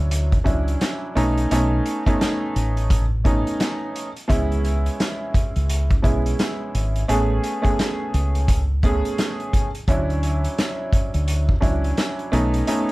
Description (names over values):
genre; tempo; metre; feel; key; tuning
hip hop, boom-bap hip-hop; 86 BPM; 4/4; swing 61% on 16ths; unclear; A4 = 439 Hz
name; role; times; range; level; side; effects
dark upright piano; accompaniment; 0.0-12.9 s; F#3 to G#4; -24 LUFS; right 1 dB; cassette tape
deep dub fingered electric bass; bass; 0.0-12.6 s; G#1 to D2; -21 LUFS; equal; none
vintage drum kit; drums; 0.1-12.9 s; hi-hat, kick drum, snare drum; -22 LUFS; equal; none
room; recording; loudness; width
little or no reverb; vinyl crackle; -19 LUFS; side -20 dB against mid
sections
0.0-12.9 A section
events
none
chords
0.0 Dmaj9; 1.2 B9; 4.3 C#m7; 7.1 Amaj9; 9.9 Dmaj9; 12.3 B9